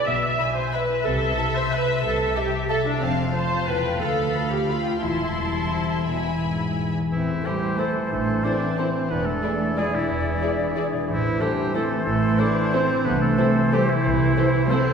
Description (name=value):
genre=classical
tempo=162-198 BPM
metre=3/4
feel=rubato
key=A minor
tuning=A4 = 438 Hz
part: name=muted studio violin section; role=melody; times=0.0-14.8 s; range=B4 to A5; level=-34 LUFS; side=left 5 dB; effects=none
part: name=muted studio viola section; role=accompaniment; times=0.0-14.8 s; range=C4 to E5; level=-27 LUFS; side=right 1 dB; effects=none
part: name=concert harp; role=arpeggios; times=0.0-14.9 s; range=E2 to D5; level=-27 LUFS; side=left 3 dB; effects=none
part: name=muted studio cello section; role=bass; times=0.1-14.9 s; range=C2 to D4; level=-28 LUFS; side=right 4 dB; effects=none
part: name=muted studio double bass section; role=bass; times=0.1-14.3 s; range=E1 to D2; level=-30 LUFS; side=right 2 dB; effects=none
part: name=muted studio violin section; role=second line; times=0.4-14.8 s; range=G#4 to C6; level=-33 LUFS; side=left 2 dB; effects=none
part: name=bright silver concert flute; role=second line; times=7.1-14.7 s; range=C5 to D5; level=-30 LUFS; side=left 2 dB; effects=none
part: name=clear clarinet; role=second line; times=7.1-14.9 s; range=C4 to A4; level=-31 LUFS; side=equal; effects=none
part: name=warm oboe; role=second line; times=7.1-14.9 s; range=E4 to D5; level=-29 LUFS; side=right 1 dB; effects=none
part: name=warm bassoon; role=accompaniment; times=7.1-14.7 s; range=E3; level=-30 LUFS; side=right 1 dB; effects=none
part: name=mellow French horn section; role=sustained chords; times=7.5-14.8 s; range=G#4 to D5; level=-30 LUFS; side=left 3 dB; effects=none
room=wet concert hall reverb, RT60 2.1 s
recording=recorded in a church or concert hall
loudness=-20 LUFS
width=side -6 dB against mid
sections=0.0-7.1 A section; 7.1-14.9 B section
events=none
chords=0.0 E7/B; 1.0 Am/C; 3.0 F; 4.0 Bm7b5/D; 5.0 Am/E; 6.1 E; 7.1 Am; 9.1 E7; 11.1 Am; 13.1 Am/C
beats=| 0.07 0.39 0.73 | 1.04 1.37 1.71 | 2.03 2.36 2.70 | 3.02 3.34 3.69 | 4.01 4.33 4.68 | 5.02 5.38 5.74 | 6.08 6.42 6.78 | 7.12 7.45 7.79 | 8.11 8.44 8.79 | 9.11 9.43 9.78 | 10.10 10.43 10.77 | 11.09 11.41 11.74 | 12.06 12.39 12.73 | 13.05 13.38 13.72 | 14.05 14.37 14.71